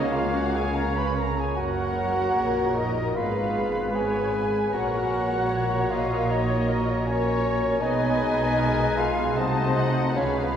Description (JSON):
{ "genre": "classical", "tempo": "70-80 BPM", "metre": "4/4", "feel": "rubato", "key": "F# major", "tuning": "A4 = 443 Hz", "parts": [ { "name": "muted symphonic violin section", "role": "melody", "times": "0.0-10.6 s", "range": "A#4 to A5", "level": "-35 LUFS", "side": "left 5 dB", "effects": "none" }, { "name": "bright concert flute", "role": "second line", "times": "0.0-10.6 s", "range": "B4 to B5", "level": "-34 LUFS", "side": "left 1 dB", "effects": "none" }, { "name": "clear oboe", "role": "second line", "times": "0.0-10.6 s", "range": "G#5 to Cb6", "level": "-36 LUFS", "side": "equal", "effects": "none" }, { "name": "mellow clarinet", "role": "second line", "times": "0.0-10.6 s", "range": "Cb5 to Gb5", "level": "-37 LUFS", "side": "equal", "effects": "none" }, { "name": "muted symphonic violin section", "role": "second line", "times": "0.0-10.6 s", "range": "B4 to B5", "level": "-35 LUFS", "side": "left 2 dB", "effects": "none" }, { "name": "muted studio viola section", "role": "accompaniment", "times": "0.0-10.6 s", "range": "A#3 to D#5", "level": "-35 LUFS", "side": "right 1 dB", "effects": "none" }, { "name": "warm bassoon", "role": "accompaniment", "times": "0.0-10.6 s", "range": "B3 to B4", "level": "-28 LUFS", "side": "equal", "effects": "none" }, { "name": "mellow French horn section", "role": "sustained chords", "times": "0.0-10.6 s", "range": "G#3 to Ab4", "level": "-32 LUFS", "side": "left 1 dB", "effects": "none" }, { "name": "concert harp", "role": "arpeggios", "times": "0.0-10.6 s", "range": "F#2 to E#5", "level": "-35 LUFS", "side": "left 6 dB", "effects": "none" }, { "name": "dark trumpet section", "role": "stabs", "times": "0.0-10.6 s", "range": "Cb5 to C#5", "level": "-34 LUFS", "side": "right 3 dB", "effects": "none" }, { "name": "muted studio cello section", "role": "bass", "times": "0.0-10.6 s", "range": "F#2 to C#3", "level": "-29 LUFS", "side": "right 1 dB", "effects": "none" }, { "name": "muted symphonic double bass section", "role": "bass", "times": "0.0-10.6 s", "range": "F#1 to C#2", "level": "-32 LUFS", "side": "right 2 dB", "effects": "none" } ], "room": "wet church reverb, RT60 3.2 s", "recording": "recorded in a church or concert hall", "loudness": "-22 LUFS", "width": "side -8 dB against mid", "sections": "0.0-10.6 A section", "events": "none", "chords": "0.0 C#; 1.6 F#; 3.2 Fdim/Ab; 4.7 F#/A#; 7.8 G#m/B; 9.4 Cdim7" }